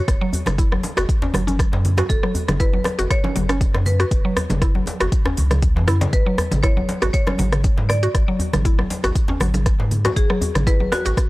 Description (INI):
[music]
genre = afro house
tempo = 119 BPM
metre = 4/4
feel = swing 54% on 16ths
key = F# minor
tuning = A4 = 440 Hz
[part]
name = marimba with medium hard mallets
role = melody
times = 0.0-11.3 s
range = F#4 to D5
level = -27 LUFS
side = left 1 dB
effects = tape echo
[part]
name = mallet-like synth pluck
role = arpeggios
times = 0.0-11.1 s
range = C#3 to F#4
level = -25 LUFS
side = equal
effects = chorus, vintage 12-bit sampler grit, sidechain pumping, tape echo
[part]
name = warm sub bass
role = bass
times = 0.1-11.1 s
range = F#1 to G#2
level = -21 LUFS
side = equal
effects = sidechain pumping
[part]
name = deep house drum kit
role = drums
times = 0.1-11.3 s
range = hi-hat, rim click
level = -26 LUFS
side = equal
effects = none
[part]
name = electronic kick drum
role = drums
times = 0.1-11.3 s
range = none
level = -19 LUFS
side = equal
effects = none
[part]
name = djembe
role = percussion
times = 0.3-11.1 s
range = none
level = -29 LUFS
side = left 1 dB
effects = none
[part]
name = congas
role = percussion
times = 0.5-11.0 s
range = none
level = -28 LUFS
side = right 1 dB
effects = none
[sound]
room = little or no reverb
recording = dry, gritty hardware recording, transformer saturation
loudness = -17 LUFS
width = side -19 dB against mid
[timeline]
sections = 0.0-11.3 A section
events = none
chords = 0.0 F#5; 6.1 G#7(no3)